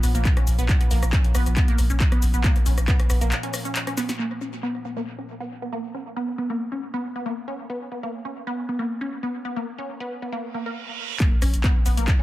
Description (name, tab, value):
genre	driving peak-time techno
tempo	137 BPM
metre	4/4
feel	straight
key	Bb phrygian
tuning	A4 = 440 Hz
part	resonant blip pluck	riff	0.0-12.2 s	Bb3 to Bb4	-29 LUFS	equal	phaser, overdrive, sidechain pumping, dub echo
part	saturated sub bass	bass	0.0-3.3, 11.4-12.1 s	Bb1	-21 LUFS	equal	overdrive, sidechain pumping, low-pass filter
part	metallic inharmonic drone	drone	0.0-4.2, 11.9-12.2 s	Bb2 to F3	-36 LUFS	equal	chorus, built-in reverb, sidechain pumping
part	punchy analog drum machine	drums	0.0-4.2, 11.2-12.2 s	handclaps, hi-hat, rim click, shaker, snare drum	-29 LUFS	left 1 dB	overdrive, sidechain pumping on hats, low-pass filter on hats, low-pass filter on snare, sidechain pumping on perc, low-pass filter on perc, tape echo
part	electronic kick drum	drums	0.3-3.0, 11.2-12.2 s	none	-19 LUFS	equal	overdrive
part	reverse cymbal and impact	sound effects	10.6-12.2 s	none	-34 LUFS	right 4 dB	none
room	light reverb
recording	echo-heavy mix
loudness	-22 LUFS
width	side -16 dB against mid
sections	0.0-4.2 A section; 4.2-11.2 B section; 11.2-12.2 A section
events	drop 0.0-4.2, 11.2-12.2; break 3.3-4.2; drum fill 4.0; filter sweep on synth arpeggio sound 4.2-11.2; reverse cymbal 10.6-11.2; impact 11.2-12.2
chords	0.0 Bb5; 4.2 N.C.; 11.2 Bb5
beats	0.25 | 0.69 1.13 1.56 2.00 | 2.44 2.88 3.32 3.75 | 4.19 4.63 5.07 5.51 | 5.95 6.38 6.82 7.26 | 7.70 8.13 8.57 9.01 | 9.45 9.89 10.32 10.76 | 11.20 11.64 12.08